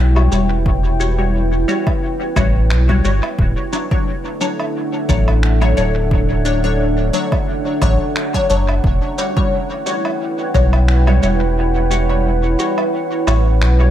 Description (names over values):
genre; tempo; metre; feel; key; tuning
ambient dub; 88 BPM; 4/4; swing 55% on 16ths; E dorian; A4 = 441 Hz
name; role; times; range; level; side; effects
deep dark ambient pad; sustained chords; 0.0-13.9 s; D4 to G5; -21 LUFS; right 1 dB; chorus, built-in reverb
soft dub sub bass; bass; 0.0-13.9 s; D1 to B1; -15 LUFS; equal; tube saturation
filtered dub chord stab; stabs; 0.2-13.9 s; F#3 to C#5; -22 LUFS; left 3 dB; phaser, ensemble chorus, dub echo
electronic woodblock, shaker and finger snaps; drums; 0.2-13.8 s; none; -27 LUFS; right 2 dB; dub echo
electronic kick drum; drums; 0.7-10.7 s; none; -19 LUFS; equal; overdrive
room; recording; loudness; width
light reverb, digital ambience; none; -14 LUFS; side -11 dB against mid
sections
0.0-13.9 A section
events
kick drops out 11.6-13.9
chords
0.0 Em69; 3.4 Dmaj7; 8.8 Em69